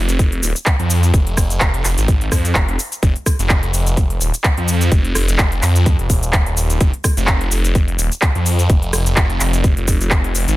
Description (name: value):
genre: bass house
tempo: 127 BPM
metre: 4/4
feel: swing 55% on 16ths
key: F minor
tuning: A4 = 441 Hz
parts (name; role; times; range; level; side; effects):
- phased detuned saw bass; bass; 0.0-10.6 s; Eb1 to F2; -16 LUFS; equal; phaser, tube saturation, sidechain pumping
- big-room dance drum kit; drums; 0.1-10.6 s; cabasa, handclaps, hi-hat, rim click; -20 LUFS; equal; overdrive, studio ambience
- electronic kick drum; drums; 0.2-10.2 s; none; -16 LUFS; equal; studio ambience
room: digital ambience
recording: dense, heavily limited modern master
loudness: -14 LUFS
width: side -17 dB against mid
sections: 0.0-10.6 A section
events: none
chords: none